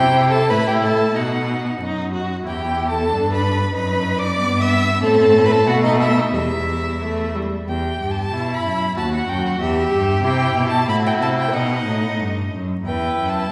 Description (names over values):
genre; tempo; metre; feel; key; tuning
quick classical-period movement for string quartet; 93 BPM; 2/4; rubato; E minor; A4 = 440 Hz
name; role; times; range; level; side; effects
rich violin; melody; 0.0-13.5 s; D#5 to E6; -26 LUFS; equal; none
rich violin; second line; 0.0-13.5 s; D#4 to E5; -24 LUFS; equal; none
rich viola; accompaniment; 0.0-13.5 s; G3 to G4; -27 LUFS; equal; none
clear cello; bass; 0.0-13.5 s; D#2 to C3; -24 LUFS; equal; none
room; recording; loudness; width
wet scoring stage reverb, RT60 1.6 s; heard from further back in the room, vinyl crackle; -19 LUFS; mono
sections
0.0-7.7 A section; 7.7-13.5 A section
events
none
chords
0.0 C; 0.5 Emadd11/A; 1.1 B; 2.5 Em; 3.1 G; 3.8 B/F#; 4.4 Em/G; 5.0 Amadd9; 5.7 B7; 6.3 Em; 9.0 D#dim; 9.6 Em; 10.2 C; 10.9 F#m7b5/A; 11.5 B; 12.9 Em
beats
0.51 | 1.15 1.81 | 2.46 3.11 | 3.75 4.39 | 5.03 5.67 | 6.34 7.01 | 7.68 8.33 | 8.96 9.60 | 10.24 10.88 | 11.53 12.20 | 12.85 13.50